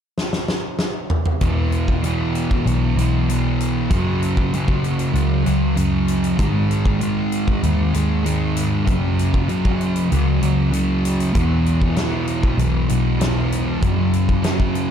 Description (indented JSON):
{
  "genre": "rock, shoegaze and dream pop",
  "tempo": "97 BPM",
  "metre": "4/4",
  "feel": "straight",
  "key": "E major",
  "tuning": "A4 = 439 Hz",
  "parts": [
    { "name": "huge arena drum kit", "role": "drums", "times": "0.2-14.9 s", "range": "hi-hat, kick drum, snare drum, toms", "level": "-23 LUFS", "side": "equal", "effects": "none" },
    { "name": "fuzz guitar", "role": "riff", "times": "1.4-14.9 s", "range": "E2 to G#3", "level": "-19 LUFS", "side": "equal", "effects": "distortion, analog chorus" },
    { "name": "vintage muted picked electric bass", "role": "bass", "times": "1.4-14.9 s", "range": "B1 to G#2", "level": "-22 LUFS", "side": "equal", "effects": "none" }
  ],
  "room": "studio reverb",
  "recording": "dark, warm production",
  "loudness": "-17 LUFS",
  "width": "side -8 dB against mid",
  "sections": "0.0-1.4 A section; 1.4-14.9 B section",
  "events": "drum fill 0.2-1.4",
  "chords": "0.0 N.C.; 1.4 E5; 3.9 F#5; 6.4 G#5; 8.9 F#5; 11.4 E5; 13.8 F#5",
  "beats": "0.17 0.79 | 1.41 2.03 2.65 3.28 | 3.90 4.52 5.14 5.77 | 6.39 7.01 7.63 8.25 | 8.87 9.49 10.11 10.73 | 11.35 11.97 12.59 13.21 | 13.82 14.44"
}